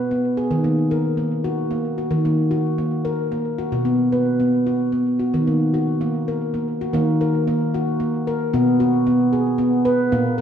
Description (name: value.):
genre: world meditative, meditative tuned percussion.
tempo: 112 BPM.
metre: 3/4.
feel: straight.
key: Eb minor.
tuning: A4 = 440 Hz.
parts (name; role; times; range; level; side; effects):
handpan; solo; 0.0-10.4 s; Bb2 to B4; -18 LUFS; equal; tape echo.
room: wet echo chamber reverb, RT60 2.1 s.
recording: dark, warm production.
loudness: -18 LUFS.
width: side -8 dB against mid.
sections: 0.0-6.9 A section; 6.9-10.4 B section.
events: none.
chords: 0.0 B5; 0.5 Ebm; 3.7 B5; 5.3 Ebm; 8.5 B5.